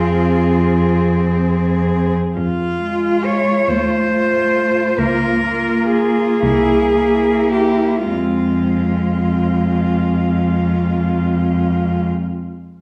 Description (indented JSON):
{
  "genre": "classical, lyrical piece for cello ensemble",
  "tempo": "35-47 BPM (dotted quarters)",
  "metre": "12/8",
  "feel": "rubato",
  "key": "F minor",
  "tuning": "A4 = 438 Hz",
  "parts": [
    { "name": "clear cello", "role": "melody", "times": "0.0-12.1 s", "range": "F4 to Db5", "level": "-22 LUFS", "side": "equal", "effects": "none" },
    { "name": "rich cello", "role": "second line", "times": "0.0-12.1 s", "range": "C4 to F4", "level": "-25 LUFS", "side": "equal", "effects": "none" },
    { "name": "rich cello", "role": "accompaniment", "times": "0.0-12.1 s", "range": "Ab3 to C4", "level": "-23 LUFS", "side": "equal", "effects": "none" },
    { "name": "clear cello", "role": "bass", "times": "0.0-12.1 s", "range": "C2 to F2", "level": "-21 LUFS", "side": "equal", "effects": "none" }
  ],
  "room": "wet recital hall reverb, RT60 1.4 s",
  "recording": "heard from further back in the room",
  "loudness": "-17 LUFS",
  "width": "mono",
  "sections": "0.0-2.4 A section; 2.4-8.1 B section; 8.1-12.8 C section",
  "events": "slowing down 0.0-8.1",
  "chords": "0.0 Fm; 3.7 F7/Eb; 5.0 Bbm/Db; 6.4 C7; 8.1 Fm",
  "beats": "0.96 | 2.36 3.68 4.98 6.43 | 8.07 9.66 11.23"
}